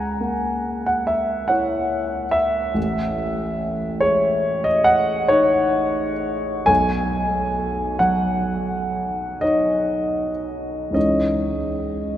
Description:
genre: classical, impressionist solo piano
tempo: 37-48 BPM (dotted quarters)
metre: 9/8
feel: rubato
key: C# minor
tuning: A4 = 440 Hz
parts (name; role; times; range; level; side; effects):
- warm grand piano; solo; 0.0-12.2 s; A1 to A#5; -19 LUFS; equal; none
room: wet cathedral reverb, RT60 6.5 s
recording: recorded in a church or concert hall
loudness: -19 LUFS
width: side -11 dB against mid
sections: 0.0-12.2 A section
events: none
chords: 0.0 C#m6; 2.8 Amaj7#11; 6.7 Badd9; 10.9 C#madd9

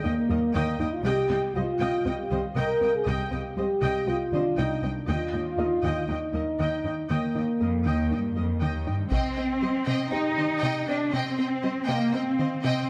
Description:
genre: cinematic, hybrid orchestral and electronic film score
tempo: 119 BPM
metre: 4/4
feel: straight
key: C minor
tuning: A4 = 442 Hz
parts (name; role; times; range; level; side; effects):
- rich symphonic viola section; accompaniment; 0.0-12.7 s; C4 to G5; -38 LUFS; equal; none
- dark French horn section; sustained chords; 0.0-8.8 s; Bb3 to Bb4; -29 LUFS; equal; none
- resonant blip pluck; arpeggios; 0.0-12.8 s; C3 to Eb4; -35 LUFS; equal; chorus, tape echo
- rich symphonic cello section; bass; 0.0-12.9 s; C2 to Eb4; -31 LUFS; equal; none
- felt-muted upright piano; texture; 0.0-12.9 s; D4 to G5; -41 LUFS; equal; none
- clear symphonic violin section; second line; 9.1-12.9 s; C5 to G5; -35 LUFS; equal; none
- taiko ensemble; drums; 9.1-10.1 s; none; -32 LUFS; equal; none
room: moderate recital hall reverb, RT60 1.5 s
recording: none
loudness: -26 LUFS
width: mono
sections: 0.0-9.1 A section; 9.1-12.9 A section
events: none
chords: 0.0 Eb; 1.0 Cm; 5.1 Eb; 9.1 Cm

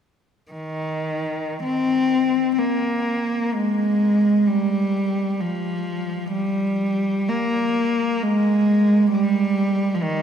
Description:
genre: classical, free, expressive piece for unaccompanied cello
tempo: 50-68 BPM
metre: 3/4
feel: rubato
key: Eb major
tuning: A4 = 441 Hz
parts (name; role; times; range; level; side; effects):
- rich cello; solo; 0.5-10.2 s; Eb3 to C4; -19 LUFS; equal; none
room: wet cathedral reverb, RT60 5.3 s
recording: recorded in a church or concert hall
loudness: -19 LUFS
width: side -8 dB against mid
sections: 0.5-10.2 A section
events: none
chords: none

